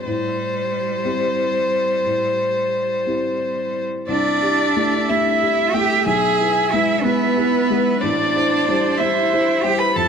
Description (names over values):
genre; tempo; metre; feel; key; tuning
neoclassical piano and strings; 61 BPM (dotted quarters); 6/8; rubato; unclear; A4 = 440 Hz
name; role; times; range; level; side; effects
rich violin; melody; 0.0-10.1 s; B4 to B5; -21 LUFS; left 2 dB; none
rich cello; second line; 0.0-10.1 s; G3 to B4; -21 LUFS; right 5 dB; none
felt-muted upright piano; accompaniment; 0.0-10.1 s; A1 to C5; -23 LUFS; left 2 dB; none
rich viola; accompaniment; 4.1-10.1 s; A4 to E5; -26 LUFS; right 4 dB; none
room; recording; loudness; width
wet plate reverb, RT60 3.1 s; heard from further back in the room; -16 LUFS; side -6 dB against mid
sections
0.0-4.1 A section; 4.1-10.1 B section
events
none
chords
0.1 Am7; 4.1 C6; 6.1 E/B; 8.0 Am7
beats
| 0.06 1.04 | 2.04 3.06 | 4.08 5.08 | 6.06 7.04 | 8.02 8.99 | 9.96